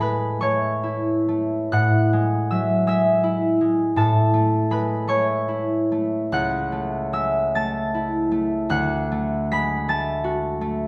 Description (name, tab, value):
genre	classical, solo harp piece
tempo	52 BPM (dotted quarters)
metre	6/8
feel	uneven beats, rubato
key	A major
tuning	A4 = 439 Hz
part	concert harp	solo	0.0-10.9 s	C#2 to B6	-22 LUFS	equal	none
room	wet recital hall reverb, RT60 1.3 s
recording	heard from further back in the room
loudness	-22 LUFS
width	mono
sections	0.0-10.9 A section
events	none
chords	0.0 A; 1.7 E/A; 4.0 A; 6.3 A/C#; 8.7 D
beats	0.41 | 1.72 2.88 | 3.98 5.09 | 6.33 7.56 | 8.71 9.89